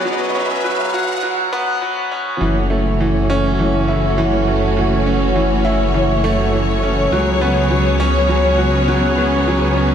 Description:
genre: piano and strings electronica.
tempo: 102 BPM.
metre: 4/4.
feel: straight.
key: F# minor.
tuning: A4 = 440 Hz.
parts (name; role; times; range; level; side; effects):
rich studio string section; sustained chords; 0.0-9.9 s; E3 to C#5; -19 LUFS; equal; none.
bright grand piano; riff; 0.0-9.9 s; E3 to F#4; -18 LUFS; right 1 dB; diffuse ambient delay.
riser; sound effects; 0.0-1.2 s; none; -26 LUFS; equal; none.
dark detuned saw bass; bass; 2.4-9.9 s; F#1 to C#2; -19 LUFS; left 1 dB; tube saturation.
room: wet lush hall reverb, RT60 2.9 s.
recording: dreamy mix soaked in reverb, high-pass filter.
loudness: -14 LUFS.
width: side -8 dB against mid.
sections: 0.0-2.4 A section; 2.4-9.9 B section.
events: build-up 0.0-2.4; riser 0.0-1.2; drop 2.4-9.9.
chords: 0.0 C#7sus4; 2.4 F#m7; 7.1 C#7sus4.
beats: | 0.06 0.65 1.24 1.82 | 2.41 3.00 3.59 4.18 | 4.77 5.36 5.94 6.53 | 7.12 7.71 8.30 8.88 | 9.47.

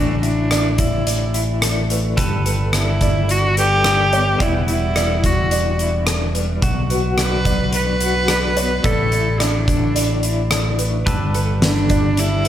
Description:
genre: post-rock.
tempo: 108 BPM.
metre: 4/4.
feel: straight.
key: unclear.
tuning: A4 = 443 Hz.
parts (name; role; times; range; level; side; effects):
rich cello; melody; 0.0-12.5 s; D4 to B4; -20 LUFS; equal; tape echo.
pedal steel guitar; sustained chords; 0.0-12.5 s; E3 to B4; -29 LUFS; equal; none.
electric guitar through a small old amp; arpeggios; 0.0-12.5 s; E2 to A4; -26 LUFS; left 3 dB; tremolo, tape echo.
felt-muted upright piano; arpeggios; 0.0-12.5 s; A4 to D5; -28 LUFS; right 4 dB; tape echo.
growling fingered electric bass; bass; 0.0-12.5 s; E1 to B1; -20 LUFS; equal; overdrive.
huge arena drum kit; drums; 0.2-12.5 s; hi-hat, kick drum, rim click, snare drum; -21 LUFS; equal; none.
room: moderate concert hall reverb, RT60 1.8 s.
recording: none.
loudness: -15 LUFS.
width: side -11 dB against mid.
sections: 0.0-12.5 A section.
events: none.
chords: 0.0 Dsus2/A; 2.2 Gadd9; 4.4 Em7; 6.6 Bm; 8.8 Dsus2/A; 11.1 Gadd9.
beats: 0.51 1.07 1.62 | 2.18 2.73 3.29 3.85 | 4.40 4.96 5.52 6.07 | 6.63 7.18 7.74 8.29 | 8.85 9.40 9.96 10.52 | 11.07 11.62 12.18.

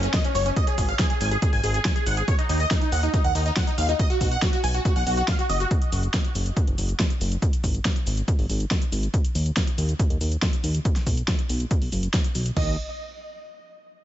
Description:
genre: uplifting trance.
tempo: 140 BPM.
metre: 4/4.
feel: straight.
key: unclear.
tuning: A4 = 440 Hz.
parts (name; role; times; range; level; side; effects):
supersaw stab; melody; 0.0-5.7, 12.6-12.7 s; Db4 to Ab5; -27 LUFS; right 1 dB; phaser, lush chorus, sidechain pumping, tape echo.
fat analog bass; bass; 0.0-12.8 s; Gb1 to Eb2; -25 LUFS; equal; sidechain pumping.
big-room dance drum kit; drums; 0.0-12.5 s; hi-hat, shaker, snare drum; -29 LUFS; equal; overdrive.
downlifter; sound effects; 0.0-2.3 s; none; -41 LUFS; right 2 dB; none.
punchy analog drum machine; drums; 0.1-12.7 s; crash cymbal, kick drum, toms; -24 LUFS; equal; none.
room: little or no reverb.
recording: nothing above 7.9 kHz.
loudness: -21 LUFS.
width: side -12 dB against mid.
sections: 0.0-12.6 A section; 12.6-14.0 B section.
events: filter sweep on analog synth bass 0.0-12.6.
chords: 0.0 Gb5; 0.6 Ab5; 2.3 Ebm; 4.0 B5; 5.7 N.C.; 10.9 B5; 12.6 N.C..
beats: 0.14 | 0.57 0.99 1.42 1.85 | 2.28 2.71 3.14 3.57 | 3.99 4.42 4.85 5.28 | 5.71 6.14 6.57 6.99 | 7.42 7.85 8.28 8.71 | 9.14 9.57 9.99 10.42 | 10.85 11.28 11.71 12.14 | 12.57.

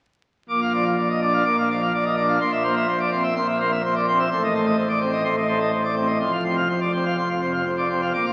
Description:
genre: classical, organ toccata.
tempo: 125 BPM.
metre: 4/4.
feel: straight.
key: Bb major.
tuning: A4 = 440 Hz.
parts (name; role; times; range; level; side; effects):
pipe organ, plenum; solo; 0.5-8.3 s; F1 to D6; -22 LUFS; equal; none.
room: wet cathedral reverb, RT60 4.5 s.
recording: very old 78 rpm record, vinyl crackle.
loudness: -22 LUFS.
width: mono.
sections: 0.5-8.3 A section.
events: none.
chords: 0.5 Bb; 2.4 C7/Bb; 4.3 Adim; 6.2 F5.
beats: | 0.49 0.97 1.46 1.94 | 2.41 2.89 3.36 3.84 | 4.31 4.78 5.25 5.73 | 6.21 6.70 7.18 7.66 | 8.15.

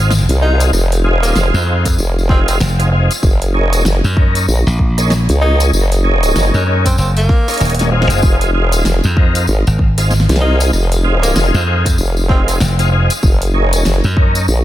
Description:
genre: glitch hop.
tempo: 96 BPM.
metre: 4/4.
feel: swing 60% on 16ths.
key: F phrygian.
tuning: A4 = 440 Hz.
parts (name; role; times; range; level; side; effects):
tonewheel organ; stabs; 0.0-14.5 s; Bb3 to Bb4; -19 LUFS; equal; chorus vibrato, slow rotary speaker, vintage 12-bit sampler grit, sidechain pumping, ping-pong delay.
glassy slap bass; bass; 0.0-14.5 s; Eb1 to Gb2; -13 LUFS; equal; none.
pop drum kit; drums; 0.1-14.5 s; hi-hat, rim click, snare drum; -23 LUFS; equal; none.
tambourine; percussion; 0.1-14.6 s; none; -25 LUFS; left 3 dB; none.
formant-sweep wobble bass; bass; 0.3-14.6 s; F1 to Db2; -13 LUFS; equal; chorus, tube saturation.
breathy tenor saxophone; melody; 0.4-12.6 s; Bb3 to Eb4; -24 LUFS; equal; ping-pong delay.
electronic kick drum; drums; 1.9-14.3 s; none; -13 LUFS; equal; none.
room: little or no reverb.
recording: none.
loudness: -11 LUFS.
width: side -13 dB against mid.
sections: 0.0-14.6 A section.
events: drum fill 7.6-8.2.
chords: 0.0 Fm7; 3.2 Gb69; 8.2 Fm7; 13.2 Gb69.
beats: 0.10 | 0.73 1.35 1.98 2.60 | 3.23 3.85 4.48 5.11 | 5.73 6.36 6.98 7.61 | 8.23 8.86 9.48 10.11 | 10.73 11.36 11.98 12.61 | 13.23 13.86 14.48.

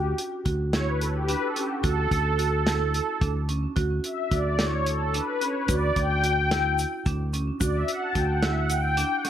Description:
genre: progressive instrumental, band music in an uneven meter.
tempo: 218 BPM (eighths).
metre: 7/8.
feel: straight.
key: D major.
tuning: A4 = 438 Hz.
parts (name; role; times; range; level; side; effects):
warm analog pad; accompaniment; 0.0-9.3 s; F#4 to A5; -27 LUFS; left 1 dB; chorus.
marimba with medium hard mallets; arpeggios; 0.0-9.3 s; C#4 to F#4; -31 LUFS; right 4 dB; ping-pong delay.
sustaining fretless electric bass; bass; 0.0-9.0 s; D2; -27 LUFS; equal; none.
warm soul drum kit; drums; 0.2-9.3 s; hi-hat, kick drum, snare drum; -29 LUFS; equal; none.
egg shaker; percussion; 5.7-9.3 s; none; -39 LUFS; left 10 dB; none.
room: small room ambience.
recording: none.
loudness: -23 LUFS.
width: side -10 dB against mid.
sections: 0.0-9.3 A section.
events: analog synth pad solo 0.0-9.3.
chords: 0.0 Dadd9.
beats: 0.18 0.46 0.74 1.01 1.29 1.56 | 1.84 2.12 2.39 2.67 2.94 3.22 3.49 | 3.77 4.04 4.32 4.59 4.87 5.14 5.42 | 5.69 5.96 6.24 6.51 6.79 7.06 7.34 | 7.61 7.88 8.16 8.43 8.71 8.98 9.25.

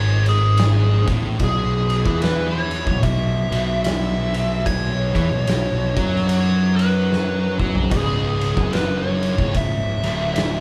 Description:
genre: stoner and doom metal.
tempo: 74 BPM.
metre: 4/4.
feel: swing 60% on 8ths.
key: unclear.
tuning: A4 = 440 Hz.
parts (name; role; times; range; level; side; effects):
fuzz lead guitar; melody; 0.0-10.6 s; G#4 to E5; -27 LUFS; equal; wah, distortion, tape echo.
thick fuzz guitar; riff; 0.0-10.6 s; C#2 to F#3; -28 LUFS; equal; distortion.
thick fuzz guitar; riff; 0.0-10.6 s; C#2 to F#3; -25 LUFS; equal; distortion.
fuzz fingered electric bass; bass; 0.0-10.6 s; C#1 to F#2; -27 LUFS; equal; overdrive.
oversized low-tuned drum kit; drums; 0.3-10.6 s; kick drum, ride cymbal, snare drum, toms; -27 LUFS; equal; none.
room: wet large studio reverb, RT60 1.2 s.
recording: band playing live in one room.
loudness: -20 LUFS.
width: mono.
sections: 0.0-10.6 A section.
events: drum fill 7.1-7.9.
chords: 0.0 N.C.; 1.4 B5; 7.9 C#m.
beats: 0.58 | 1.39 2.21 3.02 3.84 | 4.66 5.47 6.29 7.10 | 7.92 8.73 9.55 10.36.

